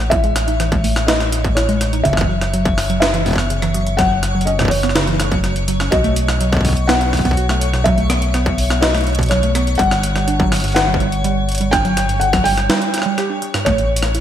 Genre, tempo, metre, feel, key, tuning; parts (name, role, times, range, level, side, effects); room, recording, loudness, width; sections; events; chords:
IDM; 124 BPM; 4/4; straight; A4 = 445 Hz
felt-muted upright piano; melody; 0.0-14.2 s; C#5 to G5; -21 LUFS; left 1 dB; ping-pong delay
warbly dusty pluck; arpeggios; 0.0-14.2 s; G2 to G4; -22 LUFS; right 3 dB; chorus, ping-pong delay
rubbery square bass; bass; 0.0-14.2 s; F#1 to B1; -19 LUFS; equal; tube saturation
twinkling granular texture; texture; 0.0-14.2 s; C#5 to C#6; -29 LUFS; equal; built-in reverb, wide subtle chorus
electronic kick drum; drums; 0.1-13.8 s; -20 LUFS; equal; distortion
jungle sampler-style drum kit; drums; 0.1-14.2 s; hi-hat, rim click, snare drum; -21 LUFS; equal; overdrive, gated reverb
moderate lush hall reverb, RT60 1.6 s, digital ambience; bright 1980s-style digital production; -14 LUFS; side -10 dB against mid
0.0-14.2 A section
break 12.7-13.7
0.0 A; 2.0 F#7(no3); 5.9 B; 9.8 G5; 13.7 A